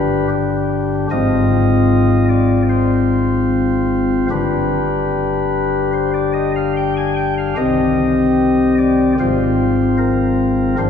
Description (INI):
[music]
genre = classical, chorale-style piece for pipe organ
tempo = 74 BPM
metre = 4/4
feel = rubato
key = unclear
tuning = A4 = 435 Hz
[part]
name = chamber organ, flutes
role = solo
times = 0.0-10.9 s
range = G1 to Ab5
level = -14 LUFS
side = left 2 dB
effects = none
[sound]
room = wet church reverb, RT60 3.2 s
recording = studio ambience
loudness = -14 LUFS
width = side -7 dB against mid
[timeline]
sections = 0.0-10.9 A section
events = none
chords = 0.0 G; 1.1 Fm/Ab; 4.3 G; 7.6 Cm; 9.2 Fm/Ab